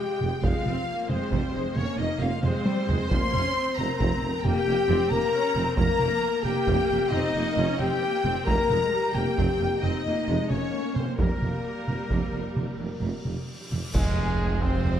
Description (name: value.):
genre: cinematic, epic orchestral film score.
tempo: 89 BPM (dotted quarters).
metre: 12/8.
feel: straight.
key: F minor.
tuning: A4 = 441 Hz.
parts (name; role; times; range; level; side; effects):
warm symphonic violin section; melody; 0.0-15.0 s; Ab4 to C6; -36 LUFS; left 2 dB; none.
mellow silver concert flute; second line; 0.0-13.2 s; Bb4 to C6; -35 LUFS; equal; none.
rich studio violin section; second line; 0.0-15.0 s; Ab4 to C6; -36 LUFS; left 2 dB; none.
warm symphonic viola section; accompaniment; 0.0-15.0 s; F3 to Db4; -33 LUFS; right 2 dB; none.
dark French horn section; sustained chords; 0.0-15.0 s; Ab3 to C5; -28 LUFS; left 4 dB; none.
mellow tuba; bass; 0.2-15.0 s; F1; -34 LUFS; right 4 dB; none.
rich symphonic cello section; bass; 0.2-15.0 s; F2; -33 LUFS; right 3 dB; none.
rich symphonic double bass section; bass; 0.2-15.0 s; F1; -32 LUFS; right 3 dB; none.
solo taiko drums; drums; 0.2-15.0 s; none; -29 LUFS; equal; none.
cymbal swell, clash cymbals and concert bass drum; percussion; 11.2-14.8 s; none; -33 LUFS; equal; none.
cymbal swell and sub drop; sound effects; 13.1-15.0 s; none; -37 LUFS; equal; none.
clear trumpet; stabs; 13.9-15.0 s; Ab3 to C4; -33 LUFS; right 2 dB; none.
room: moderate scoring stage reverb, RT60 1.6 s.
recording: none.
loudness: -23 LUFS.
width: side -9 dB against mid.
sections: 0.0-13.9 A section; 13.9-15.0 B section.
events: drum fill 2.4-3.1; cymbal swell 13.1-13.9; band accent 13.9-14.4; impact 13.9-15.0.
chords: 0.0 Fm.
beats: | 0.44 1.10 1.76 2.43 | 3.11 3.78 4.45 5.12 | 5.79 6.46 7.13 7.80 | 8.48 9.15 9.83 10.51 | 11.19 11.88 12.57 13.25 | 13.94 14.62.